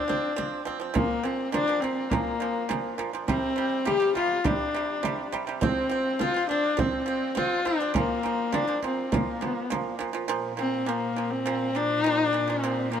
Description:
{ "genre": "mongolian traditional, Mongolian folk", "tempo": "103 BPM", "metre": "4/4", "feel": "straight", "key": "Bb gong mode", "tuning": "A4 = 441 Hz", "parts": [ { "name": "clear horsehead fiddle", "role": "melody", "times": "0.0-13.0 s", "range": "Bb3 to G4", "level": "-26 LUFS", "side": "left 3 dB", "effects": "none" }, { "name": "pipa", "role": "arpeggios", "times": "0.0-13.0 s", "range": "Bb2 to C4", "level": "-31 LUFS", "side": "right 6 dB", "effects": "none" }, { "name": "frame drum", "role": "percussion", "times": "0.1-10.1 s", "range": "none", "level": "-29 LUFS", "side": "right 2 dB", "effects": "none" }, { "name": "rich cello", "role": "drone", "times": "10.3-13.0 s", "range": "Bb2", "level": "-35 LUFS", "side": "right 2 dB", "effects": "none" } ], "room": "moderate huge ambient reverb, RT60 7.5 s", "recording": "none", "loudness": "-24 LUFS", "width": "side -8 dB against mid", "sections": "0.0-10.3 A section; 10.3-13.0 B section", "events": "none", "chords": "0.0 F5; 1.0 Bb5; 3.3 C5; 5.6 F5; 8.0 Bb5" }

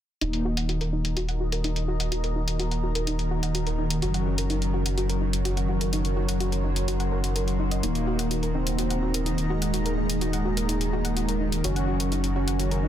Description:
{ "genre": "melodic techno", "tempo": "126 BPM", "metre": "4/4", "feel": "straight", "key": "Eb dorian", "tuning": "A4 = 440 Hz", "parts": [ { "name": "evolving wavetable pad", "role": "sustained chords", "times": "1.0-12.9 s", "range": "Gb4 to C6", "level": "-36 LUFS", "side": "right 1 dB", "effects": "chorus, built-in reverb" }, { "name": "soft round pluck", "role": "arpeggios", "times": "0.2-12.9 s", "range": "Eb4 to Gb5", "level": "-34 LUFS", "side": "left 1 dB", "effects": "chorus, dub echo" }, { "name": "brassy analog pad", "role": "stabs", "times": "0.2-12.9 s", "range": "Eb3 to Gb4", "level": "-31 LUFS", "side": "left 3 dB", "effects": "chorus, dub echo" }, { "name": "round analog bass", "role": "bass", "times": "0.2-12.9 s", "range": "Eb1 to Gb1", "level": "-27 LUFS", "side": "equal", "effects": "none" }, { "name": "bowed-like drone", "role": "drone", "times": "2.0-12.9 s", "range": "Eb3", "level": "-37 LUFS", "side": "right 2 dB", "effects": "built-in reverb" }, { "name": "electronic hi-hat", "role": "drums", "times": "0.2-12.8 s", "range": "none", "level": "-33 LUFS", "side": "left 2 dB", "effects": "low-pass filter on hats, low-pass filter on room" }, { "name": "wide unison lead", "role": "melody", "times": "7.8-12.9 s", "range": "Ab3 to Db4", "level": "-30 LUFS", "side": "right 2 dB", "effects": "none" } ], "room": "light reverb", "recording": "dense, heavily limited modern master", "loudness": "-24 LUFS", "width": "side -10 dB against mid", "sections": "0.2-12.9 A section", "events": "filter sweep on synth arpeggio sound 0.2-12.9; filter sweep on analog synth pad 0.2-12.9", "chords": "0.2 Ebm; 4.0 Gb; 7.8 Ebm; 11.6 Gb" }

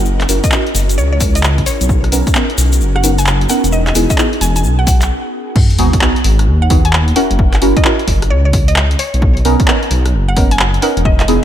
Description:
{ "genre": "UK garage, two-step garage", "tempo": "131 BPM", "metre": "4/4", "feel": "swing 65% on 16ths", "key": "unclear", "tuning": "A4 = 445 Hz", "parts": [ { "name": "ethereal airy pad", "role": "sustained chords", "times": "0.0-5.1 s", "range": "B3 to A#4", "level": "-25 LUFS", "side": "equal", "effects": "ensemble chorus, built-in reverb, sidechain pumping" }, { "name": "dark detuned saw bass", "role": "bass", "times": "0.0-11.4 s", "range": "E1 to D#2", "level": "-13 LUFS", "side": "equal", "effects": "tube saturation" }, { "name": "egg shaker", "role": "percussion", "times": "0.1-5.1 s", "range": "none", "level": "-23 LUFS", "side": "left 4 dB", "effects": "none" }, { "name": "punchy analog drum machine", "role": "drums", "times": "0.2-11.4 s", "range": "crash cymbal, handclaps, hi-hat, rim click", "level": "-19 LUFS", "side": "equal", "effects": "none" }, { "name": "deep mellow chord stab", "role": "stabs", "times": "0.3-11.4 s", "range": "B3 to A#4", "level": "-17 LUFS", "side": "right 2 dB", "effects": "chorus, phaser, tape echo" }, { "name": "mallet-like synth pluck", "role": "melody", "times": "0.4-11.3 s", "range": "C#5 to G#5", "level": "-22 LUFS", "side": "equal", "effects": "chorus, tape echo" }, { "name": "electronic kick drum", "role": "drums", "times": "0.4-11.2 s", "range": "none", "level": "-14 LUFS", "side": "equal", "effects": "none" }, { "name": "sub drop", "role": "sound effects", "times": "5.6-7.4 s", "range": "none", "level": "-18 LUFS", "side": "equal", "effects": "none" } ], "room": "light reverb, digital ambience", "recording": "none", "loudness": "-10 LUFS", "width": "side -11 dB against mid", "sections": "0.0-5.6 A section; 5.6-11.4 B section", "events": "stop 5.1-5.6; drop 5.6-11.4; impact 5.6-7.4", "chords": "0.0 F#7; 1.9 Bmaj9; 3.7 Emaj7; 5.6 G#m7; 7.2 F#7; 9.2 Bmaj9" }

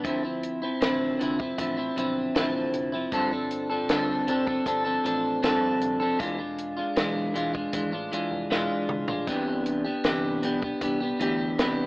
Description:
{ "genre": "indie pop, bedroom pop", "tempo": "78 BPM", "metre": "4/4", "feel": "straight", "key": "C major", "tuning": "A4 = 440 Hz", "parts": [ { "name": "clean electric guitar", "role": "accompaniment", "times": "0.0-11.9 s", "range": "G2 to A4", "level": "-25 LUFS", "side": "equal", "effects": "lush chorus, warbly pitch drift" }, { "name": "vintage muted picked electric bass", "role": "bass", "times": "0.0-11.9 s", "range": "E1 to D2", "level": "-42 LUFS", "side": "equal", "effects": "none" }, { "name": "compact cocktail drum kit", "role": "drums", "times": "0.0-11.8 s", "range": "hi-hat, kick drum, snare drum, toms", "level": "-30 LUFS", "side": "equal", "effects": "none" } ], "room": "light reverb, small room ambience", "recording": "AM radio sound", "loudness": "-24 LUFS", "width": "side -23 dB against mid", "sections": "0.0-11.9 A section", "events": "drum fill 8.5-9.3", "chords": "0.0 Dm9; 3.1 G9sus4; 6.2 E7b9; 9.3 Cmaj9" }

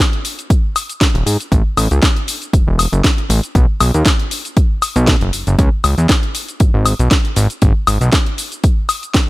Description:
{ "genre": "nu-disco, nu disco", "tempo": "118 BPM", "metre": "4/4", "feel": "swing 54% on 16ths", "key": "C# minor", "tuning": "A4 = 440 Hz", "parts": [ { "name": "house drum kit", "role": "drums", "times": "0.0-9.3 s", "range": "hi-hat, shaker, snare drum, woodblock", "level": "-17 LUFS", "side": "left 1 dB", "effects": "overdrive" }, { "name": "electronic kick drum", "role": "drums", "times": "0.5-9.3 s", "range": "none", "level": "-13 LUFS", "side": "equal", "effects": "overdrive" }, { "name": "fat analog bass", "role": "bass", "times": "1.1-8.1 s", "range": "D#1 to G#2", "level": "-14 LUFS", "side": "equal", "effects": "none" } ], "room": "digital ambience", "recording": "none", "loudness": "-12 LUFS", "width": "side -19 dB against mid", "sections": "0.0-9.3 A section", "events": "none", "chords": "none" }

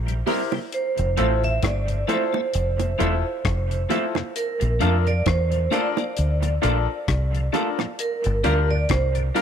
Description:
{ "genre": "roots reggae", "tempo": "66 BPM", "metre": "4/4", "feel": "swing 56% on 16ths", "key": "unclear", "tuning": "A4 = 441 Hz", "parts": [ { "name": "deep dub fingered electric bass", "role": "bass", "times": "0.0-9.3 s", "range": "E1 to F2", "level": "-22 LUFS", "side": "equal", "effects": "none" }, { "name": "tonewheel organ", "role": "accompaniment", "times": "0.1-9.4 s", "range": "F2 to F4", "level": "-33 LUFS", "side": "left 11 dB", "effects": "overdrive, chorus vibrato, slow rotary speaker" }, { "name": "deep reggae drum kit", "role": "drums", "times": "0.1-9.4 s", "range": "hi-hat, kick drum, rim click", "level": "-29 LUFS", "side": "left 4 dB", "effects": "none" }, { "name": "electric guitar through a small old amp", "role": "accompaniment", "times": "0.3-9.4 s", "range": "G3 to Bb4", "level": "-30 LUFS", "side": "right 12 dB", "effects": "tape echo" }, { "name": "clear grand piano", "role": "stabs", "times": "0.3-9.4 s", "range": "D4 to C5", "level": "-28 LUFS", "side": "left 10 dB", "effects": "none" }, { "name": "bongos", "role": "percussion", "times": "0.3-9.4 s", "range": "none", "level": "-31 LUFS", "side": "right 12 dB", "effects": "none" }, { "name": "vibraphone with medium hard mallets", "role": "melody", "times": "0.7-9.4 s", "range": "Bb4 to E5", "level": "-26 LUFS", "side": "right 3 dB", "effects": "tape echo" } ], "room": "light reverb", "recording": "1960s-style stereo with parts hard left and right", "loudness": "-20 LUFS", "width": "side -8 dB against mid", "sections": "0.0-9.4 A section", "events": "none", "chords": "0.0 C7; 0.7 Fmaj7; 4.4 Bbmaj7; 8.0 Gm7" }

